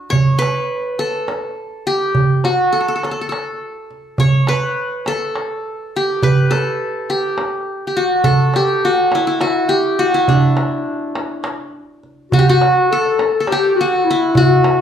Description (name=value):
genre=Turkish makam ensemble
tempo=207 BPM (eighths)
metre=7/8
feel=straight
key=unclear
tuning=A4 = 440 Hz
part: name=qanun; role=melody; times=0.0-14.8 s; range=D4 to C#5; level=-16 LUFS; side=equal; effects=none
part: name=darbuka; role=percussion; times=0.1-14.8 s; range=none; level=-16 LUFS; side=right 2 dB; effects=none
part: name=mellow clarinet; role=second line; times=12.3-14.8 s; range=E4 to A4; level=-17 LUFS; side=left 6 dB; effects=none
room=wet large studio reverb, RT60 0.9 s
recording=band playing live in one room, lossy compression artefacts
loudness=-14 LUFS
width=side -8 dB against mid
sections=0.0-12.3 A section; 12.3-14.8 B section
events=none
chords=none